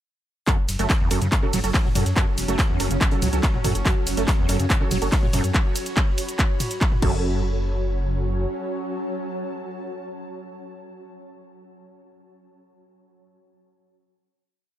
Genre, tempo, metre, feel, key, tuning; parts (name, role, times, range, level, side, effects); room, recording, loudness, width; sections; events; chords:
driving peak-time techno; 142 BPM; 4/4; straight; F# minor; A4 = 441 Hz
overdriven acid bass; riff; 0.5-7.4 s; F#1 to A3; -29 LUFS; equal; distortion, ensemble chorus, sidechain pumping, dub echo
rave stab; stabs; 0.5-10.0 s; F#3 to A4; -31 LUFS; right 4 dB; chorus, built-in reverb, sidechain pumping, dub echo
swarming drone; drone; 1.6-10.0 s; F#3 to C#4; -34 LUFS; right 2 dB; built-in reverb, sidechain pumping
electronic kick drum; drums; 0.5-7.1 s; -21 LUFS; equal; overdrive
punchy analog drum machine; drums; 0.5-7.1 s; crash cymbal, handclaps, hi-hat, ride cymbal, shaker, toms; -27 LUFS; equal
warm soul drum kit; drums; 0.5-5.4 s; hi-hat, shaker, snare drum; -39 LUFS; left 2 dB
granular cloud pad; texture; 2.1-10.4 s; F#4 to B5; -34 LUFS; equal; built-in reverb, sidechain pumping
dark detuned saw bass; bass; 0.7-8.5 s; E1 to F#2; -25 LUFS; equal; sidechain pumping
digital ambience; -20 LUFS; side -12 dB against mid
0.5-7.2 drop; 7.2-10.6 final note
drop 0.5-7.2
0.5 F#m